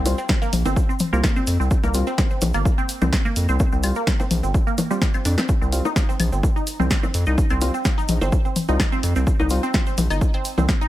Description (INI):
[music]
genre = minimal techno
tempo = 127 BPM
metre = 4/4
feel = swing 53% on 16ths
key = C minor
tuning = A4 = 440 Hz
[part]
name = round analog bass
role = bass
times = 0.0-10.7 s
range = G1 to F2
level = -21 LUFS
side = equal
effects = sidechain pumping
[part]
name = percussive organ stab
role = stabs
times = 0.1-9.6 s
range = G3 to F4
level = -30 LUFS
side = left 2 dB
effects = chorus, cassette tape, tape echo
[part]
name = punchy analog drum machine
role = drums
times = 0.1-10.8 s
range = hi-hat, snare drum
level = -26 LUFS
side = equal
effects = none
[part]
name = electronic bongos, toms and claves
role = percussion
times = 0.1-10.7 s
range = none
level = -26 LUFS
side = left 3 dB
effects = overdrive, tape echo
[part]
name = tube shaker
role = percussion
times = 0.1-10.9 s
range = none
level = -37 LUFS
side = right 3 dB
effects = none
[part]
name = resonant blip pluck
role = riff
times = 0.2-10.9 s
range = G3 to Eb4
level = -26 LUFS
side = right 2 dB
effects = phaser, sidechain pumping, tape echo
[part]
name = electronic kick drum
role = drums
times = 0.3-10.8 s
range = none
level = -21 LUFS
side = equal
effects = none
[sound]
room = little or no reverb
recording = none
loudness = -18 LUFS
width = side -14 dB against mid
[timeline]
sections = 0.0-10.9 A section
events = none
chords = 0.0 Csus4